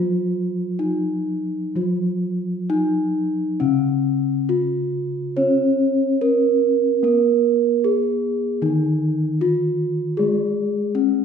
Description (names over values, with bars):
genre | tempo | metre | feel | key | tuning
gamelan | 63-77 BPM | 4/4 | straight | unclear | A4 = 440 Hz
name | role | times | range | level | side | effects
gamelan-type bronze metallophone | melody | 0.0-11.2 s | Db4-40c to Db5-40c | -20 LUFS | right 1 dB | none
gamelan-type bronze metallophone | accompaniment | 0.0-11.2 s | Db3-40c to Db4-40c | -23 LUFS | left 1 dB | none
room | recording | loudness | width
wet recital hall reverb, RT60 1.4 s | recorded in a church or concert hall, nothing above 10.6 kHz | -18 LUFS | side -7 dB against mid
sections
0.0-8.6 A section; 8.6-11.2 B section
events
none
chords
none